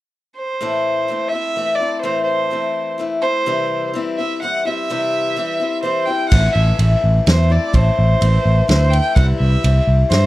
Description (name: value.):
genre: folk rock and heartland rock.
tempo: 126 BPM.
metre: 3/4.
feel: straight.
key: A minor.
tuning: A4 = 440 Hz.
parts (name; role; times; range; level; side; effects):
rich fiddle; melody; 0.4-10.3 s; C5 to G5; -21 LUFS; right 2 dB; none.
picked acoustic archtop guitar; accompaniment; 0.6-10.3 s; A2 to E4; -21 LUFS; left 4 dB; none.
picked electric bass; bass; 6.3-10.3 s; A1 to G2; -14 LUFS; equal; none.
vintage drum kit; drums; 6.3-10.2 s; crash cymbal, kick drum, ride cymbal, snare drum; -18 LUFS; equal; none.
room: little or no reverb.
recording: dry, close 1970s-style studio recording.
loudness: -15 LUFS.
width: side -16 dB against mid.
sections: 0.6-6.3 A section; 6.3-10.3 B section.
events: none.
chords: 0.0 N.C.; 0.6 Am; 3.5 C; 6.3 Am; 9.2 C.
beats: 0.14 | 0.61 1.09 1.56 | 2.04 2.52 2.99 | 3.47 3.94 4.42 | 4.89 5.37 5.84 | 6.32 6.79 7.26 | 7.74 8.21 8.69 | 9.16 9.63 10.11.